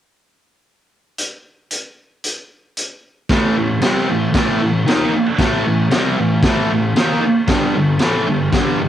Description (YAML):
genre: garage rock duo or trio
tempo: 114 BPM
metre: 4/4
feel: straight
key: unclear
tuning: A4 = 440 Hz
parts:
  - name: raw garage drum kit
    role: drums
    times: 1.2-8.7 s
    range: crash cymbal, hi-hat, kick drum, snare drum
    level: -19 LUFS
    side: left 1 dB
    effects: cassette tape
  - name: thick fuzz guitar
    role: riff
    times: 3.3-8.9 s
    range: G2 to D#4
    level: -15 LUFS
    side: equal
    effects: distortion, cassette tape
room: small room ambience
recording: home recording on cassette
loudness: -15 LUFS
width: side -11 dB against mid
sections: 1.2-3.3 A section; 3.3-8.9 B section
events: none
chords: 1.2 N.C.; 3.3 A5; 7.5 G5